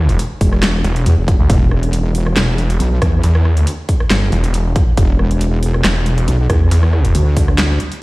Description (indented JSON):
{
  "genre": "heavy wobble dubstep",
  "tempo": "138 BPM",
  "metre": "4/4",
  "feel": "swing 53% on 16ths, half-time",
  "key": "E minor",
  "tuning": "A4 = 440 Hz",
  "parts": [
    { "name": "snarling distorted saw bass", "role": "bass", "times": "0.0-7.1 s", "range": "E1 to E2", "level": "-14 LUFS", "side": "equal", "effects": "distortion, overdrive" },
    { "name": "dubstep drum kit", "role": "drums", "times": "0.1-8.0 s", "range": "handclaps, hi-hat, rim click, snare drum", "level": "-21 LUFS", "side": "equal", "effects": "studio ambience" },
    { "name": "wobble bass", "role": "bass", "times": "0.4-7.8 s", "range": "E1 to E2", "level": "-14 LUFS", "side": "equal", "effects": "chorus, overdrive" },
    { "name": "electronic kick drum", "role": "drums", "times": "0.4-7.5 s", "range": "none", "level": "-14 LUFS", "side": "equal", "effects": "studio ambience" }
  ],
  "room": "little or no reverb",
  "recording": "played on a big sound system in a bare room, stone room reverb",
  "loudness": "-12 LUFS",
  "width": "side -21 dB against mid",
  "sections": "0.0-8.0 A section",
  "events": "none",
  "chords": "none",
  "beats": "0.19 0.63 1.06 | 1.50 1.93 2.37 2.80 | 3.24 3.67 4.11 4.54 | 4.97 5.41 5.84 6.28 | 6.71 7.15 7.58"
}